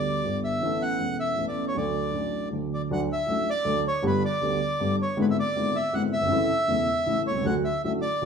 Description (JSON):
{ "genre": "tango", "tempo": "158 BPM", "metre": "3/4", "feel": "rubato", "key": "D major", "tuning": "A4 = 440 Hz", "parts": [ { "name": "bandoneon", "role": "melody", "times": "0.0-8.3 s", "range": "B4 to F#5", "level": "-27 LUFS", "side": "equal", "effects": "none" }, { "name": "dark grand piano", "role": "accompaniment", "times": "0.0-8.3 s", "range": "E1 to A4", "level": "-26 LUFS", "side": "equal", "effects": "none" } ], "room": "wet studio reverb, RT60 0.8 s", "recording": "heard from further back in the room", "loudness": "-23 LUFS", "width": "side -6 dB against mid", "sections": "0.0-2.9 A section; 2.9-8.3 A section", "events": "none", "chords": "0.0 G; 0.6 Aadd9; 1.8 D; 4.0 G; 5.2 E7/G#; 6.3 A; 7.4 D" }